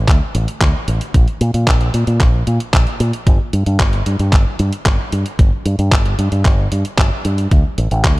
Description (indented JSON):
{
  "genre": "italo disco",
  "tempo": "113 BPM",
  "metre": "4/4",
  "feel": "straight",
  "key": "unclear",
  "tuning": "A4 = 440 Hz",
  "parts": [
    { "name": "fingered electric bass with an envelope filter", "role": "bass", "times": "0.0-8.2 s", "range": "G1 to Bb2", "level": "-16 LUFS", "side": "equal", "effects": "tube saturation" },
    { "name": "detuned 8-bit digital drum machine", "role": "drums", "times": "0.1-8.2 s", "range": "handclaps, hi-hat", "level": "-21 LUFS", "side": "equal", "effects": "studio reverb" },
    { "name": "electronic kick drum", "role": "drums", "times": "0.1-8.2 s", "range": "none", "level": "-13 LUFS", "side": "equal", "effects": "studio reverb" }
  ],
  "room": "little or no reverb",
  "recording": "dark, warm production",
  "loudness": "-13 LUFS",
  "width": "side -20 dB against mid",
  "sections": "0.0-8.2 A section",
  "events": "none",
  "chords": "none"
}